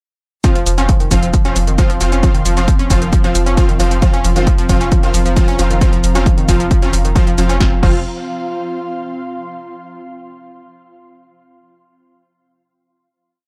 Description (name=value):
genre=driving peak-time techno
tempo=134 BPM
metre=4/4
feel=straight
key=unclear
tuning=A4 = 439 Hz
part: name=analog pluck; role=riff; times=0.4-8.0 s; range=Eb3 to Db4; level=-23 LUFS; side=equal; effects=chorus, tube saturation, sidechain pumping, analog delay
part: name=rave stab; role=stabs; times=0.4-8.0 s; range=F3 to F4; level=-24 LUFS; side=equal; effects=chorus, built-in reverb, sidechain pumping, tape echo
part: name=swarming drone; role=drone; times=1.6-7.7 s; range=F3 to C4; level=-32 LUFS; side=equal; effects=none
part: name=electronic kick drum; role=drums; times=0.4-7.9 s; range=none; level=-16 LUFS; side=equal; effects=overdrive
part: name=punchy analog drum machine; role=drums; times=0.4-7.9 s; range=crash cymbal, hi-hat, shaker, snare drum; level=-27 LUFS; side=equal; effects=none
part: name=ethereal airy pad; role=texture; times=1.3-9.4 s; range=C4 to C6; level=-27 LUFS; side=equal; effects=ensemble chorus, built-in reverb, sidechain pumping
part: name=warm sub bass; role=bass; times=0.6-8.0 s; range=F1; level=-20 LUFS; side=equal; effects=sidechain pumping, low-pass filter
room=little or no reverb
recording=dry, gritty hardware recording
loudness=-14 LUFS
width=mono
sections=0.4-7.6 drop; 7.6-9.4 final chord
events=drop 0.4-7.6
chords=0.4 F5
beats=| 0.44 0.89 1.34 1.78 | 2.23 2.68 3.13 3.57 | 4.02 4.47 4.92 5.37 | 5.81 6.26 6.71 7.16 | 7.60 8.05 8.50 8.95